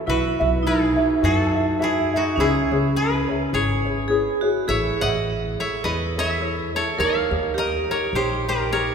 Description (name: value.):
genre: Hawaiian.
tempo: 104 BPM.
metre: 4/4.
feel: swing 58% on 8ths.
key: C# minor.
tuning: A4 = 441 Hz.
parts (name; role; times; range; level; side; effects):
koto; melody; 0.0-8.9 s; D#4 to F#5; -24 LUFS; left 1 dB; none.
vibraphone with hard mallets; second line; 0.0-8.9 s; C#4 to A#4; -24 LUFS; right 2 dB; none.
ukulele; accompaniment; 0.0-8.9 s; D#4 to E5; -25 LUFS; equal; none.
upright bass; bass; 0.1-8.9 s; G#1 to F#2; -26 LUFS; equal; none.
room: wet concert hall reverb, RT60 2.6 s.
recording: minimal, uncompressed stereo recording.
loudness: -19 LUFS.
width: side -6 dB against mid.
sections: 0.0-8.9 A section.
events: none.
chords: 0.1 Bsus4; 2.4 C#m7; 4.7 Aadd9; 7.0 D#7.